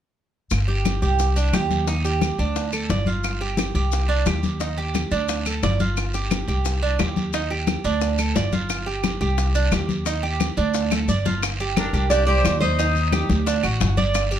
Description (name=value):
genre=latin, Cuban son and guajira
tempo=176 BPM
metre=4/4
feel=straight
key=unclear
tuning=A4 = 440 Hz
part: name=upright bass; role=bass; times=0.5-14.4 s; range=G1 to Eb2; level=-23 LUFS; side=equal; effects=none
part: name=bongos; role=percussion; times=0.5-14.3 s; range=none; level=-30 LUFS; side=left 8 dB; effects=none
part: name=claves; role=percussion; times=0.5-14.3 s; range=none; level=-31 LUFS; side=right 2 dB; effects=none
part: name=congas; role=percussion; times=0.5-14.4 s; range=none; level=-27 LUFS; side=left 3 dB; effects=none
part: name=guiro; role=percussion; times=0.5-14.4 s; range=none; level=-34 LUFS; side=right 4 dB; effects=none
part: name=maracas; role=percussion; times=0.5-14.4 s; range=none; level=-35 LUFS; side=left 7 dB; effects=none
part: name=Cuban tres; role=arpeggios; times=0.7-14.4 s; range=D4 to Eb5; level=-26 LUFS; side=right 6 dB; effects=none
part: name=nylon-string guitar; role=melody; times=11.8-13.6 s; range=Bb4 to D5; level=-23 LUFS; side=right 3 dB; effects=plate reverb
part: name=breathy bright jazz flute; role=second line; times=11.8-13.4 s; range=D4 to G4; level=-26 LUFS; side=left 6 dB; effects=none
room=light reverb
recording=none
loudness=-19 LUFS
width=side -10 dB against mid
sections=0.5-11.4 A section; 11.4-14.4 B section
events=drum fill 10.9-11.4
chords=0.5 Gsus4; 1.2 Cmadd9; 1.9 Eb; 2.6 D5; 3.2 G7sus4; 3.9 Cmadd9; 4.6 Eb; 5.3 D5; 6.0 G7sus4; 6.7 Cmadd9; 7.3 Eb; 8.0 D5; 8.7 G7sus4; 9.4 Cmadd9; 10.1 Eb; 10.7 D5; 11.4 Gm; 12.1 Cmadd9; 12.8 Eb; 13.5 D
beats=| 0.51 0.85 1.20 1.54 | 1.88 2.22 2.56 2.90 | 3.24 3.58 3.92 4.27 | 4.61 4.95 5.29 5.63 | 5.97 6.31 6.65 6.99 | 7.33 7.68 8.02 8.36 | 8.70 9.04 9.38 9.72 | 10.06 10.40 10.74 11.08 | 11.42 11.76 12.11 12.45 | 12.79 13.12 13.46 13.80 | 14.14